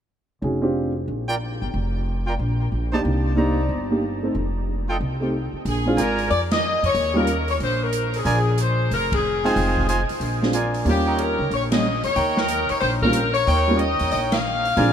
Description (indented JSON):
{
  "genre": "jazz, big band swing",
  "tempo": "184 BPM",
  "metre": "4/4",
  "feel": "swing 64% on 8ths",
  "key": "Bb major",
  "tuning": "A4 = 440 Hz",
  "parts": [
    { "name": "warm baby grand piano", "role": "accompaniment", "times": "0.4-0.9, 2.9-7.3, 9.4-14.9 s", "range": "G3 to G5", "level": "-25 LUFS", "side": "right 1 dB", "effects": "none" },
    { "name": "upright bass", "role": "bass", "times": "0.4-14.9 s", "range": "F1 to F2", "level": "-24 LUFS", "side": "equal", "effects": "none" },
    { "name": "clear trumpet section", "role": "stabs", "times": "1.3-14.9 s", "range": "Eb4 to Bb5", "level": "-27 LUFS", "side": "right 2 dB", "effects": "ping-pong delay" },
    { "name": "bright saxophone section", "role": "melody", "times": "5.7-14.9 s", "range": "G4 to F5", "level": "-22 LUFS", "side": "left 3 dB", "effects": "ping-pong delay" },
    { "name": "open jazz drum kit", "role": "drums", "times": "5.7-14.9 s", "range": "hi-hat, kick drum, ride cymbal, snare drum", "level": "-30 LUFS", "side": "right 1 dB", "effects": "none" }
  ],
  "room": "moderate huge ambient reverb, RT60 8.1 s",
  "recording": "dreamy mix soaked in reverb",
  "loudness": "-19 LUFS",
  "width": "side -8 dB against mid",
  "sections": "0.4-5.6 A section; 5.6-14.9 B section",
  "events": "band accent 6.5, 9.1, 11.7, 14.3",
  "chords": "0.4 Bb6/F; 3.0 Cm9; 4.3 F9; 5.6 Bb7; 7.0 Eb7(no3); 8.3 Bb7(no3); 9.6 Fm7; 10.2 Bb7; 10.9 Eb7"
}